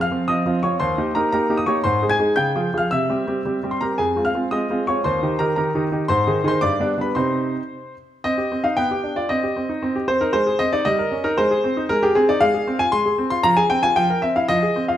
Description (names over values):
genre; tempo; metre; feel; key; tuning
classical-period piano sonatina; 114 BPM; 2/4; rubato; C minor from 6.1 s; A4 = 441 Hz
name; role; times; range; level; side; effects
clear baby grand piano; solo; 0.0-15.0 s; Eb2 to Ab6; -18 LUFS; equal; none
room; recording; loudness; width
moderate recital hall reverb, RT60 1.3 s; none; -18 LUFS; side -11 dB against mid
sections
0.0-8.2 A section; 8.2-15.0 B section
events
none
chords
0.0 F5; 0.8 Eb; 1.8 Ab; 2.4 Db; 2.9 C; 4.0 Fm; 5.0 Eb; 6.1 Ab; 6.6 G; 7.1 Cm; 8.8 G7/B; 9.3 Cm; 10.3 Ab; 10.9 Eb7/G; 11.4 Ab; 12.4 Fm/Ab; 13.4 Fm; 14.0 C7/F